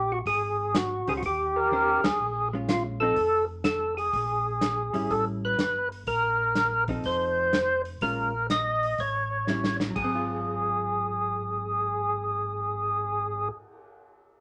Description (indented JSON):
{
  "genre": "soul jazz organ trio",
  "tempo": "124 BPM",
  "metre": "4/4",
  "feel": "swing 67% on 8ths",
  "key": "Ab mixolydian",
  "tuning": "A4 = 438 Hz",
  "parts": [
    { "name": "percussive tonewheel organ", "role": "melody", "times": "0.0-13.5 s", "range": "F4 to Eb5", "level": "-28 LUFS", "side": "equal", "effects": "slow rotary speaker, overdrive" },
    { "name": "mellow tonewheel organ", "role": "bass", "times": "0.0-13.5 s", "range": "F1 to Eb2", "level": "-38 LUFS", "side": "equal", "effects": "chorus vibrato, slow rotary speaker" },
    { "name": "warm soul drum kit", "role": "drums", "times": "0.3-13.8 s", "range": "crash cymbal, cymbal swell, hi-hat, kick drum, ride cymbal, snare drum", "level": "-33 LUFS", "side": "equal", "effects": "none" },
    { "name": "hollow-body jazz guitar", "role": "accompaniment", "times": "1.1-13.7 s", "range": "Eb3 to C5", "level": "-36 LUFS", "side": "equal", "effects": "none" }
  ],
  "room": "moderate club reverb, RT60 0.6 s",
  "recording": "none",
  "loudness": "-27 LUFS",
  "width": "mono",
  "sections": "0.0-2.2 A section; 2.2-10.0 B section; 10.0-13.9 C section",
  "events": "drum fill 1.7-2.2, 9.5-10.0; band accent 1.9",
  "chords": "0.3 Ab; 1.2 Eb6; 2.2 Bbm7; 3.2 F; 4.1 Bbm7; 5.1 A7; 6.1 Bb5; 7.0 F7; 8.0 Bbm7; 9.0 A7; 10.0 Ab6"
}